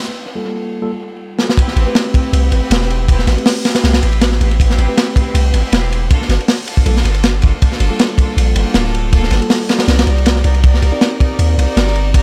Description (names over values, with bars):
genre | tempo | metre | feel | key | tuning
drum and bass, jungle | 159 BPM | 4/4 | swing 53% on 16ths | A phrygian | A4 = 439 Hz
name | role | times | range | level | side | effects
bright chamber string section | sustained chords | 0.0-12.2 s | Bb3 to D5 | -27 LUFS | equal | none
mellow tine electric piano | stabs | 0.0-12.2 s | G3 to D5 | -26 LUFS | equal | analog delay
crunchy breakbeat drum kit | drums | 1.4-12.2 s | hi-hat, kick drum, ride cymbal, snare drum | -17 LUFS | equal | analog delay
long sustained 808-style bass | bass | 1.8-12.2 s | D1 to Eb2 | -16 LUFS | equal | none
room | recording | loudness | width
small room ambience | echo-heavy mix | -14 LUFS | mono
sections
0.0-1.6 A section; 1.6-12.2 B section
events
build-up 0.0-1.6; filter sweep on tine electric piano 0.0-1.6; break 0.1-1.6; drum fill 1.4; drop 1.6-12.2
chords
0.1 Gm9; 1.6 Am9; 6.1 Gm9; 9.9 Cm9